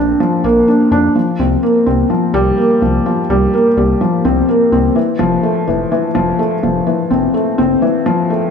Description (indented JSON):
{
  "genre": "piano and strings electronica",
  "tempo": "126 BPM",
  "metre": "4/4",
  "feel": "straight",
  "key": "unclear",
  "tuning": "A4 = 439 Hz",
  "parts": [
    { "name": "felt-muted upright piano", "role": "riff", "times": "0.0-8.5 s", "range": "E3 to D4", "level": "-12 LUFS", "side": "left 1 dB", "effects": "tape echo" },
    { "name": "round analog bass", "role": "bass", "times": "0.0-7.8 s", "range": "F1 to F2", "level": "-19 LUFS", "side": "equal", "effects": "none" }
  ],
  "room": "wet lush hall reverb, RT60 1.6 s, small room ambience",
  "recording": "none",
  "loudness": "-11 LUFS",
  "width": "side -6 dB against mid",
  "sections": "0.0-8.5 A section",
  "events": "none",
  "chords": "0.0 Bbadd9; 1.2 C7sus4; 5.0 Fmaj7",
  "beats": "0.20 0.68 | 1.16 1.63 2.11 2.58 | 3.06 3.54 4.01 4.49 | 4.97 5.44 5.92 6.39 | 6.87 7.35 7.82 8.30"
}